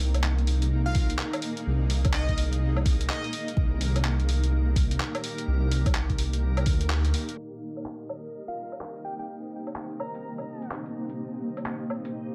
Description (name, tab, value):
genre	future garage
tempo	126 BPM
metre	4/4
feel	swing 62% on 16ths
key	C minor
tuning	A4 = 440 Hz
part	granular cloud pad	sustained chords	0.0-12.3 s	Bb3 to C5	-37 LUFS	equal	built-in reverb, sidechain pumping
part	dark detuned saw bass	bass	0.0-7.1 s	C2 to D2	-27 LUFS	equal	sidechain pumping
part	backwards swelling texture	texture	0.6-12.3 s	Bb4 to Eb5	-46 LUFS	equal	built-in reverb
part	lo-fi sampler-style drum kit	drums	0.1-12.1 s	handclaps, hi-hat, woodblock	-36 LUFS	equal	low-pass filter on hats, low-pass filter on perc, low-pass filter on snare, low-pass filter on room
part	plucky unison lead	melody	0.9-3.5, 8.5-10.7 s	Eb5 to Bb5	-40 LUFS	equal	dub echo
part	electronic kick drum	drums	1.0-6.8 s	none	-28 LUFS	equal	none
room	light reverb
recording	low-pass filter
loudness	-28 LUFS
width	mono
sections	0.0-7.4 A section; 7.4-12.3 B section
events	band accent 6.9; filter sweep on drum 7.4-12.3; filter sweep on ambient pad 7.4-12.3; filter sweep 7.4-12.3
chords	0.0 Absus2/C; 7.4 Cm7